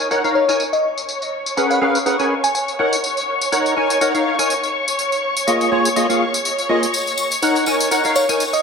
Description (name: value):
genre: piano house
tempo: 123 BPM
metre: 4/4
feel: swing 55% on 16ths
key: Eb minor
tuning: A4 = 440 Hz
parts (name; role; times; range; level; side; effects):
- dark symphonic string section; sustained chords; 0.0-8.6 s; Db5 to Db6; -22 LUFS; left 1 dB; low-pass filter
- percussive organ stab; riff; 0.0-8.4 s; Bb3 to Ab5; -18 LUFS; equal; ensemble chorus, dub echo
- tambourine; drums; 0.0-8.6 s; none; -24 LUFS; left 2 dB; low-pass filter on hats, studio reverb, low-pass filter on snare, low-pass filter on perc
- bell-like FM electric piano; melody; 0.4-2.6, 8.2-8.6 s; Db5 to Ab5; -21 LUFS; left 1 dB; chorus, phaser, dub echo
- tambourine; percussion; 6.9-8.6 s; none; -26 LUFS; left 3 dB; none
room: wet digital room reverb, RT60 1.2 s, small room reverb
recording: none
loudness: -16 LUFS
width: side -5 dB against mid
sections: 0.0-8.6 A section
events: none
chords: 0.0 Ebm7; 0.8 Abm11; 2.8 Ebm7; 5.0 Bb7sus4; 6.9 Ebm7